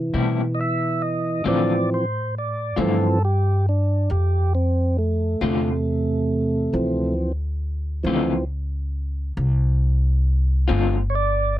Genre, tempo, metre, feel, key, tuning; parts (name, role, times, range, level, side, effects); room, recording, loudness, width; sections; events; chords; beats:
slow blues; 46 BPM (dotted quarters); 12/8; straight; A4 = 439 Hz
tonewheel organ; sustained chords; 0.0-11.6 s; C3 to E5; -22 LUFS; right 2 dB; slow rotary speaker
upright bass; bass; 0.0-11.6 s; G1 to C3; -22 LUFS; equal
electric guitar through a small old amp; accompaniment; 0.1-11.0 s; A2 to F4; -23 LUFS; left 5 dB; tremolo
little or no reverb; dry, close 1970s-style studio recording; -19 LUFS; side -13 dB against mid
0.0-11.6 A section
tonewheel organ solo 0.0-11.6
0.0 Am7; 1.5 Dm7
0.14 | 1.46 2.78 4.10 5.42 | 6.74 8.05 9.37 10.69